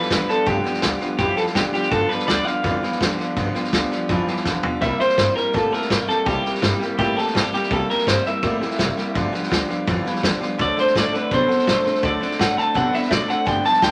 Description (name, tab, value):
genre	rockabilly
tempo	166 BPM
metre	4/4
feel	straight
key	G mixolydian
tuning	A4 = 442 Hz
part	electric guitar through a small old amp	melody	0.0-13.9 s	G4 to A5	-23 LUFS	equal	none
part	picked steel-string acoustic guitar	accompaniment	0.0-13.9 s	G2 to A4	-29 LUFS	equal	none
part	electric guitar through a small old amp	riff	0.0-13.9 s	G2 to B3	-29 LUFS	equal	none
part	vintage drum kit	drums	0.0-13.9 s	hi-hat, kick drum, snare drum, toms	-26 LUFS	equal	none
part	upright bass	bass	0.1-13.9 s	F1 to C3	-31 LUFS	equal	none
room	moderate studio reverb, RT60 0.8 s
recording	none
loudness	-21 LUFS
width	mono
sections	0.0-13.9 A section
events	drum fill 4.5-4.8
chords	0.0 G7; 4.8 C7; 9.2 G7; 10.6 D7